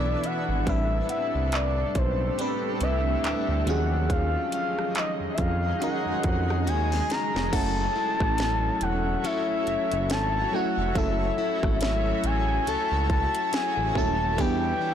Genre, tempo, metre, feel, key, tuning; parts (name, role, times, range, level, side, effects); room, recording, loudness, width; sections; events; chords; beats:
contemporary R&B; 70 BPM; 4/4; swing 58% on 16ths; A4 = 440 Hz
soft octave-layered synth lead; melody; 0.0-14.9 s; B4 to A#5; -28 LUFS; left 2 dB; chorus, digital delay
FM electric piano; accompaniment; 0.0-14.9 s; E3 to B4; -32 LUFS; right 2 dB; chorus, phaser
granular cloud pad; sustained chords; 0.0-14.9 s; G#3 to B5; -33 LUFS; equal; built-in reverb, sidechain pumping
picked plugged-in steel-string acoustic guitar; arpeggios; 0.0-14.9 s; A2 to A4; -35 LUFS; left 6 dB
smooth synth bass; bass; 0.0-14.7 s; D#1 to E#2; -28 LUFS; right 1 dB
trap drum kit; drums; 0.2-14.6 s; crash cymbal, handclaps, hi-hat, kick drum, rim click, snare drum; -29 LUFS; right 1 dB
small celesta; texture; 1.1-11.1 s; E5 to A5; -41 LUFS; left 1 dB
little or no reverb; blown-out, overdriven recording, overdrive; -23 LUFS; side -9 dB against mid
0.0-7.5 A section; 7.5-14.9 B section
drum fill 6.7-7.5
0.0 Bm11; 0.7 Am11; 3.7 D#m11; 7.5 F#m7; 14.4 Em7
| 0.67 1.53 2.38 3.24 | 4.10 4.95 5.81 6.67 | 7.53 8.38 9.24 10.10 | 10.95 11.81 12.67 13.53 | 14.38